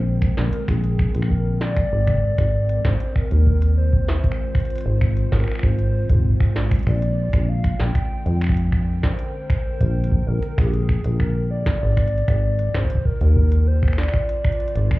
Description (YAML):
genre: IDM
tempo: 97 BPM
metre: 4/4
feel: straight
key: F dorian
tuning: A4 = 439 Hz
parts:
  - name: warbly nostalgic lead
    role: melody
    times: 0.0-15.0 s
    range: G4 to G5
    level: -29 LUFS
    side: left 1 dB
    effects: chorus, tape echo
  - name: warbly tape-like pad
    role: sustained chords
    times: 0.0-15.0 s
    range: D3 to G5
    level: -31 LUFS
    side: right 1 dB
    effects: chorus, built-in reverb
  - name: deep acid bass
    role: bass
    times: 0.0-15.0 s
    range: Ab1 to F2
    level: -19 LUFS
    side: equal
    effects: tube saturation
  - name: electronic kick drum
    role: drums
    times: 0.2-15.0 s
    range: none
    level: -21 LUFS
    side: equal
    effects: overdrive
  - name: industrial drum kit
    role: drums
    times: 0.2-15.0 s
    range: finger snaps, hi-hat, snare drum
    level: -33 LUFS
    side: equal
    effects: none
room: digital ambience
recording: heard muffled through a wall, club reverb, EQ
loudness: -18 LUFS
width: side -19 dB against mid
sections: 0.0-15.0 A section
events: none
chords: 0.0 Bb13; 1.9 Fm7/Ab; 6.9 Bb13; 11.8 Fm7/Ab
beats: 0.06 0.68 1.30 | 1.92 2.54 3.16 3.78 | 4.39 5.01 5.63 6.25 | 6.87 7.49 8.11 8.72 | 9.34 9.96 10.58 11.20 | 11.82 12.44 13.05 13.67 | 14.29 14.91